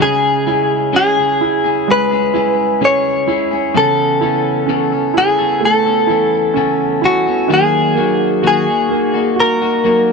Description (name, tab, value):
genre	pop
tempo	64 BPM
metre	4/4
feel	straight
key	C# minor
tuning	A4 = 439 Hz
part	direct-recorded clean electric guitar	melody	0.0-10.1 s	F#4 to C#5	-14 LUFS	left 2 dB	lush chorus
part	clear concert grand piano	accompaniment	0.0-10.1 s	C#3 to F#4	-18 LUFS	right 13 dB	none
part	clean electric guitar	arpeggios	0.0-10.1 s	C#3 to A4	-19 LUFS	left 12 dB	spring reverb
room	moderate plate reverb, RT60 3.5 s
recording	1960s-style stereo with parts hard left and right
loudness	-12 LUFS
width	side -4 dB against mid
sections	0.0-10.1 A section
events	none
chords	0.0 C#m; 3.7 Aadd9/C#; 7.5 D#m